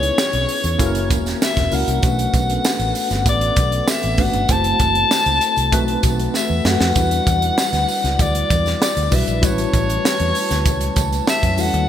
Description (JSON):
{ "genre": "polished 1980s jazz-funk pop", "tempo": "97 BPM", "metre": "4/4", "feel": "straight", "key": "unclear", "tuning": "A4 = 441 Hz", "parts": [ { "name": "warm soprano saxophone", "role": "melody", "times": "0.0-11.9 s", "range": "C#5 to A5", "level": "-20 LUFS", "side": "left 3 dB", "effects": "none" }, { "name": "tine electric piano", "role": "accompaniment", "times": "0.0-11.9 s", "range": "G3 to C5", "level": "-24 LUFS", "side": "left 1 dB", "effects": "overdrive, fast stereo tremolo, analog chorus" }, { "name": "glass harmonica", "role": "sustained chords", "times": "0.0-11.9 s", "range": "G3 to A5", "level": "-29 LUFS", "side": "equal", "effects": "none" }, { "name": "vintage muted fingered electric bass", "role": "bass", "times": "0.0-11.8 s", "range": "E1 to F#2", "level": "-22 LUFS", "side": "right 1 dB", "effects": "none" }, { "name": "crisp fusion drum kit", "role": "drums", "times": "0.0-11.9 s", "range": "hi-hat, kick drum, snare drum", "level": "-20 LUFS", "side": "right 1 dB", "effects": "none" }, { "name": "tambourine", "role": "percussion", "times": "0.2-11.7 s", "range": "none", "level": "-32 LUFS", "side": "right 6 dB", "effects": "none" } ], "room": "moderate lush hall reverb, RT60 2.7 s", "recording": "bright 1980s-style digital production", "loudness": "-15 LUFS", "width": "side -10 dB against mid", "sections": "0.0-11.9 A section", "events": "drum fill 6.3-7.0", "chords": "0.0 C#m7; 0.8 F#7; 2.0 Bm9; 4.5 F#m7b5; 5.7 B7b9; 7.0 Em9; 9.4 A13", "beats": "0.18 0.80 1.41 | 2.03 2.65 3.27 3.88 | 4.50 5.12 5.73 6.35 | 6.96 7.58 8.20 8.81 | 9.43 10.04 10.66 11.27" }